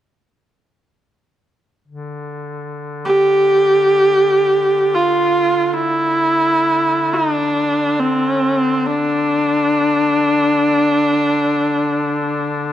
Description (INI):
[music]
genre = caucasian folk, Caucasian lament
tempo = free time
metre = none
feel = none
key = D minor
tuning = A4 = 440 Hz
[part]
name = clear duduk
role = drone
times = 1.9-12.7 s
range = D3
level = -25 LUFS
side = left 2 dB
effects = none
[part]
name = warm viola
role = melody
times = 3.1-12.7 s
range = C4 to G4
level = -14 LUFS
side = equal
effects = none
[sound]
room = moderate scoring stage reverb, RT60 1.5 s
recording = dark, warm production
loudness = -13 LUFS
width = side -11 dB against mid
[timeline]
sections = 1.9-12.7 A section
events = none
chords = none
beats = free time